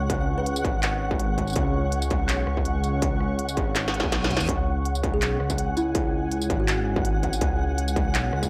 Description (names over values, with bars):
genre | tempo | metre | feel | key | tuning
half-time drum and bass | 164 BPM | 4/4 | swing 54% on 16ths, half-time | unclear | A4 = 440 Hz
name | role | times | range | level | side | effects
dark analog pad | sustained chords | 0.0-8.5 s | G#3 to C#6 | -35 LUFS | equal | chorus, sidechain pumping
dark detuned saw bass | bass | 0.0-8.5 s | G#1 to E2 | -29 LUFS | equal | none
flickering grainy texture | texture | 0.0-8.5 s | F#5 | -35 LUFS | equal | built-in reverb
electronic kick drum | drums | 0.1-8.5 s | none | -29 LUFS | equal | distortion
industrial drum kit | drums | 0.1-8.5 s | handclaps, hi-hat, rim click, snare drum, tambourine | -31 LUFS | equal | none
kalimba | melody | 0.4-0.6, 5.1-6.7 s | E4 to B4 | -34 LUFS | equal | analog delay
reverse cymbal | sound effects | 4.0-4.5 s | none | -37 LUFS | equal | none
room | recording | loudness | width
little or no reverb | dry, gritty hardware recording | -25 LUFS | mono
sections
0.0-8.5 A section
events
drum fill 3.8-4.5; reverse cymbal 4.0-4.5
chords
0.0 C#5